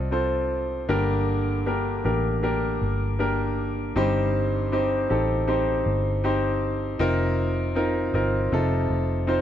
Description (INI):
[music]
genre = pop ballad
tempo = 79 BPM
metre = 4/4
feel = straight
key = unclear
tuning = A4 = 442 Hz
[part]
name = clear baby grand piano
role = accompaniment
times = 0.0-9.4 s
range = G2 to Eb5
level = -24 LUFS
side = left 1 dB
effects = none
[part]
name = vintage muted fingered electric bass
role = bass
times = 0.0-9.4 s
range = F1 to C2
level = -26 LUFS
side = equal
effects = none
[sound]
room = light reverb, studio ambience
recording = none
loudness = -22 LUFS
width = side -10 dB against mid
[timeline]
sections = 0.0-9.4 A section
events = none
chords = 0.0 F; 0.9 Gm; 4.0 Cm/G; 7.0 F7sus4; 8.5 F7